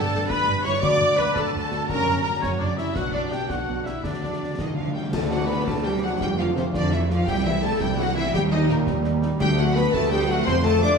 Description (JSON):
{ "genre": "cinematic, heroic adventure film score", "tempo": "112 BPM (dotted quarters)", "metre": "6/8", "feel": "straight", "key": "D major", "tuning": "A4 = 440 Hz", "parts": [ { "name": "warm symphonic violin section", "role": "melody", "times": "0.0-10.9 s", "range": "Bb4 to D6", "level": "-32 LUFS", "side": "left 2 dB", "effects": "none" }, { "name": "mellow hollow silver concert flute", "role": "second line", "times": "0.0-4.6 s", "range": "C#5 to D6", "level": "-34 LUFS", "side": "left 2 dB", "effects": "none" }, { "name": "warm oboe", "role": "second line", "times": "0.0-4.6 s", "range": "C#5 to D6", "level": "-34 LUFS", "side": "left 1 dB", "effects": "none" }, { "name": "warm symphonic violin section", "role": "second line", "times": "0.0-11.0 s", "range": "Bb4 to D6", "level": "-32 LUFS", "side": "left 2 dB", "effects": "none" }, { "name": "rich symphonic viola section", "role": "accompaniment", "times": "0.0-10.9 s", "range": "G3 to D5", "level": "-28 LUFS", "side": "equal", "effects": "none" }, { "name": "clear trombone section", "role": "sustained chords", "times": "0.0-11.0 s", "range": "D3 to D4", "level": "-33 LUFS", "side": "right 4 dB", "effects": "none" }, { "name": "dark French horn section", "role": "sustained chords", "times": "0.0-11.0 s", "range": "F#3 to D5", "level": "-28 LUFS", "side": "left 3 dB", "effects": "none" }, { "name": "concert harp", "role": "arpeggios", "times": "0.0-11.0 s", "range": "F#2 to G5", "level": "-33 LUFS", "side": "left 7 dB", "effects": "none" }, { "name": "rich symphonic cello section", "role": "bass", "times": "0.1-11.0 s", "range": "D2 to D4", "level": "-30 LUFS", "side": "right 3 dB", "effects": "none" }, { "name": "rich symphonic double bass section", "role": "bass", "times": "0.1-10.9 s", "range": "F#1 to F2", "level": "-29 LUFS", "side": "right 3 dB", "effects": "none" }, { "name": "concert snare drum, concert bass drum and clash cymbals", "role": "drums", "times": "0.3-11.0 s", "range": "none", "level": "-33 LUFS", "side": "equal", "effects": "none" }, { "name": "timpani", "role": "percussion", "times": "0.8-1.3, 4.0-5.6, 9.4-9.9 s", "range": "D3", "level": "-32 LUFS", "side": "left 2 dB", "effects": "none" }, { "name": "cymbal swell and tam-tam", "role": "percussion", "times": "3.0-6.5 s", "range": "none", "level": "-36 LUFS", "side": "left 3 dB", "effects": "none" }, { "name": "dark tuba", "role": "bass", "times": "5.1-10.9 s", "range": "F1 to Eb2", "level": "-29 LUFS", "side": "right 3 dB", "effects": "none" } ], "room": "wet scoring stage reverb, RT60 1.5 s", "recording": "studio ambience", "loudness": "-20 LUFS", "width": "side -5 dB against mid", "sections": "0.0-5.1 A section; 5.1-11.0 B section", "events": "timpani fill 4.0-5.1; band accent 5.1-5.5", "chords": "0.0 G; 0.8 D; 1.9 F#; 3.0 Bm; 4.0 D; 6.2 F; 7.3 C; 8.3 Eb; 9.4 D; 10.5 F" }